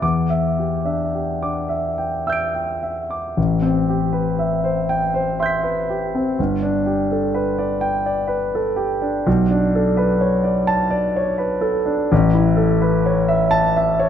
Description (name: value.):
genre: classical, impressionist solo piano.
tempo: 35-42 BPM (dotted quarters).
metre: 6/8.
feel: rubato.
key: A minor from 3.4 s.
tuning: A4 = 440 Hz.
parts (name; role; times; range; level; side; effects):
warm concert grand piano; solo; 0.0-14.1 s; G1 to D7; -17 LUFS; equal; none.
room: moderate concert hall reverb, RT60 2.1 s.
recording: none.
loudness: -17 LUFS.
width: side -9 dB against mid.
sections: 0.0-3.4 A section; 3.4-14.1 B section.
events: none.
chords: 0.0 Em7; 3.4 Am9; 6.4 Gadd9; 9.3 Bm9; 12.1 Aadd9.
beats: | 0.02 1.70 | 3.37 4.90 | 6.38 7.83 | 9.27 10.69 | 12.11 13.54.